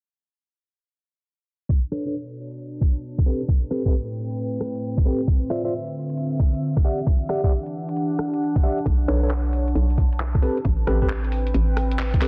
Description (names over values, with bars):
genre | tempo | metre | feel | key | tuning
UK garage, two-step garage | 134 BPM | 4/4 | swing 66% on 16ths | B phrygian | A4 = 440 Hz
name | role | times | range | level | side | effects
electronic kick drum | drums | 1.7-12.2 s | none | -22 LUFS | equal | overdrive, studio ambience
garage drum kit | drums | 1.7-12.3 s | handclaps, hi-hat, rim click | -35 LUFS | equal | studio ambience, soft clipping on snare
warbly tape-like pad | texture | 1.7-12.3 s | A2 to A5 | -31 LUFS | equal | chorus, built-in reverb, phaser, sidechain pumping
tine electric piano | stabs | 1.9-12.3 s | C4 to F#5 | -29 LUFS | equal | low-pass filter, delay
hollow knocking FM bass | bass | 8.9-12.2 s | A1 to B1 | -24 LUFS | equal | none
room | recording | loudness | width
light reverb, digital ambience | dense, heavily limited modern master, low-pass filter | -23 LUFS | mono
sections
1.7-12.3 A section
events
filter sweep on tine electric piano 1.7-12.3; filter sweep 1.7-12.3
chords
1.7 Bm9; 3.3 Am9; 5.3 Dm9; 6.8 Em9; 8.9 Bm9; 10.4 Am9